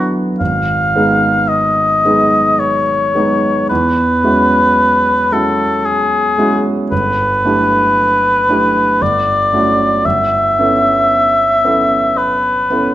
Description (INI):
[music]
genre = classical, impressionist duo for oboe and grand piano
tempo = 56 BPM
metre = 3/4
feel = rubato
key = unclear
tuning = A4 = 443 Hz
[part]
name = mellow oboe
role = melody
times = 0.0-12.9 s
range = F#4 to E#5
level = -12 LUFS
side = left 1 dB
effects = none
[part]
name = clear baby grand piano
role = accompaniment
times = 0.0-12.9 s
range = G1 to A4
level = -16 LUFS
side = right 2 dB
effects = none
[sound]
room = moderate recital hall reverb, RT60 1.5 s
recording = close, detailed microphones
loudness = -11 LUFS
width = side -13 dB against mid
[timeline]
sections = 0.0-12.9 A section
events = none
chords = 0.4 G#m6; 3.7 E69; 6.9 G69; 9.0 Dmaj9/G; 10.0 Aadd9/G